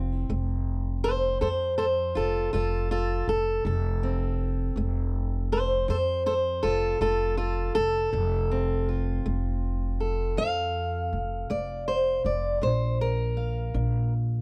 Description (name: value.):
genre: acoustic country blues, solo or duo.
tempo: 54 BPM (dotted quarters).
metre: 12/8.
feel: straight.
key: F major.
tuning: A4 = 440 Hz.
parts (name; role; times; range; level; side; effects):
fingerpicked steel-string acoustic guitar; melody; 0.0-14.4 s; F3 to F5; -29 LUFS; equal; none.
upright bass; bass; 0.0-14.4 s; F1 to F2; -31 LUFS; equal; none.
room: little or no reverb.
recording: dry, close 1970s-style studio recording.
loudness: -27 LUFS.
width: mono.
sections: 0.0-14.4 A section.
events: none.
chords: 0.0 F; 12.6 Bb.